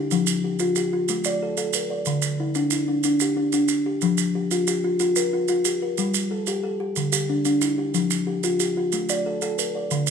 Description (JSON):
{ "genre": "southern african traditional, mbira-style interlocking cycle", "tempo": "122 BPM (dotted quarters)", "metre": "12/8", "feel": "straight", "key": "unclear", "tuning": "A4 = 440 Hz", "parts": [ { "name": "kalimba", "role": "arpeggios", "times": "0.0-10.1 s", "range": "D3 to D5", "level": "-22 LUFS", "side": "left 1 dB", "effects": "none" }, { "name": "maracas", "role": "percussion", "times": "0.1-10.1 s", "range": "none", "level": "-27 LUFS", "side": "right 11 dB", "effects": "none" } ], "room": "moderate recital hall reverb, RT60 1.7 s", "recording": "minimal, uncompressed stereo recording", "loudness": "-21 LUFS", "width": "side -7 dB against mid", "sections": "0.0-10.1 A section", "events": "none", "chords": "0.1 Fsus2; 1.1 Bbmaj7/A; 2.1 Dsus24; 4.0 Fsus24; 6.0 Gm; 7.0 D5; 7.9 Fsus2; 8.9 Bbmaj7/A" }